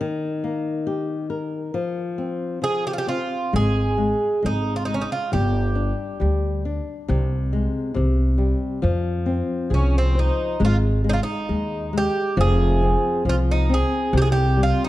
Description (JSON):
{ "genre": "fado-style ballad", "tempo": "68 BPM", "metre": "2/4", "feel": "rubato", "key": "F minor, Ab major from 10.6 s", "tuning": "A4 = 440 Hz", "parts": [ { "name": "flamenco guitar", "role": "accompaniment", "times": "0.0-14.9 s", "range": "C3 to C5", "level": "-25 LUFS", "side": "left 3 dB", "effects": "none" }, { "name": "Irish bouzouki", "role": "melody", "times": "2.6-6.6, 9.7-14.9 s", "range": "C4 to Ab4", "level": "-24 LUFS", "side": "right 2 dB", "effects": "none" }, { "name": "upright bass", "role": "bass", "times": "3.5-14.7 s", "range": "F1 to F2", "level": "-21 LUFS", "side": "equal", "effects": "none" } ], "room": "light reverb", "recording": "dark, warm production", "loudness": "-20 LUFS", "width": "side -16 dB against mid", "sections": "0.0-10.6 A section; 10.6-14.9 B section", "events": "none", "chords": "0.0 Eb; 1.7 F5; 3.5 Ab5; 5.3 G5; 7.1 Ab/C; 8.0 C5; 8.8 Fm; 10.6 Ab5; 12.4 Fm; 14.1 C5" }